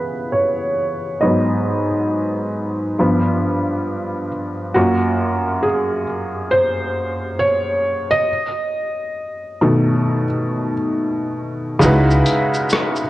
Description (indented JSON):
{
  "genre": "lo-fi hip hop",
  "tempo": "68 BPM",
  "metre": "4/4",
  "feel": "swing 62% on 16ths",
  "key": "unclear",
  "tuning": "A4 = 441 Hz",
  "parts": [
    { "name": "felt-muted upright piano", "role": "accompaniment", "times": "0.0-13.1 s", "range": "F#2 to D#5", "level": "-17 LUFS", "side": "equal", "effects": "low-pass filter" },
    { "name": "upright bass", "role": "bass", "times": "11.8-12.2 s", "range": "C#2", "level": "-16 LUFS", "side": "equal", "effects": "none" },
    { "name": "lo-fi sampler-style drum kit", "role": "drums", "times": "11.8-13.1 s", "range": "hi-hat, rim click, shaker", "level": "-21 LUFS", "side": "equal", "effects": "none" }
  ],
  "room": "moderate plate reverb, RT60 2.6 s",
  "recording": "worn, warbling old tape, cassette tape, warbly pitch drift",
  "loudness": "-16 LUFS",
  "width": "side -16 dB against mid",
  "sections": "0.0-11.8 A section; 11.8-13.1 B section",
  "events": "felt piano solo 0.0-11.8; filter sweep on felt piano 0.0-11.8; kick muted 11.8-13.1",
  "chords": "0.0 C#m7; 1.2 G#m7; 3.0 G7; 4.8 F#maj9; 8.3 B7; 11.8 C#m11"
}